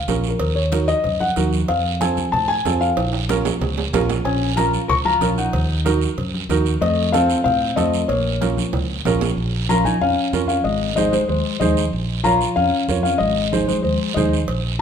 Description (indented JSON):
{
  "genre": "latin, cumbia",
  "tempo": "188 BPM",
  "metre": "4/4",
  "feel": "straight",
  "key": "Bb harmonic minor, Bb minor from 9.4 s",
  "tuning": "A4 = 440 Hz",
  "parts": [
    { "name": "felt-muted upright piano", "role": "melody", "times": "0.0-14.8 s", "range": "Bb4 to Db6", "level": "-21 LUFS", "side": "left 3 dB", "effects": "none" },
    { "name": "fingered electric bass", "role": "bass", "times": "0.0-14.8 s", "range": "Ab1 to A2", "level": "-23 LUFS", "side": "equal", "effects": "none" },
    { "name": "dark upright piano", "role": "accompaniment", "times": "0.1-14.4 s", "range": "C4 to Db5", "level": "-24 LUFS", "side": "right 7 dB", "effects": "none" },
    { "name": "congas", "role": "percussion", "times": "0.1-14.3 s", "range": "none", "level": "-26 LUFS", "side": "left 1 dB", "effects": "none" },
    { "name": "cowbell and timbales", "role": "percussion", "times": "0.1-9.3, 14.5-14.6 s", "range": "none", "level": "-29 LUFS", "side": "right 6 dB", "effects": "none" },
    { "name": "guiro", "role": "percussion", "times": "0.1-14.8 s", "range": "none", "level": "-31 LUFS", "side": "right 8 dB", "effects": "none" },
    { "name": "mellow electric guitar", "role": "second line", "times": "4.3-14.4 s", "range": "Ab3 to Bb4", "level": "-25 LUFS", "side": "left 5 dB", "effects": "none" }
  ],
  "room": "wet large studio reverb, RT60 1.4 s",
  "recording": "minimal, uncompressed stereo recording",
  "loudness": "-17 LUFS",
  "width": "side -8 dB against mid",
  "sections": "0.0-9.4 A section; 9.4-14.8 B section",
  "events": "drum fill 3.0-4.3, 8.7-9.4",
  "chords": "0.4 Ebm; 1.7 F; 3.0 Bbm; 5.5 Ebm; 6.8 F7; 8.1 Bbm; 10.7 Ab; 11.9 Bbm; 13.2 Ab",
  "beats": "0.08 | 0.41 0.73 1.05 1.37 | 1.69 2.01 2.33 2.65 | 2.98 3.30 3.62 3.94 | 4.26 4.58 4.90 5.22 | 5.54 5.86 6.18 6.50 | 6.82 7.13 7.46 7.78 | 8.09 8.41 8.73 9.05 | 9.37 9.69 10.01 10.33 | 10.65 10.97 11.29 11.61 | 11.93 12.25 12.57 12.89 | 13.21 13.53 13.85 14.16 | 14.48 14.80"
}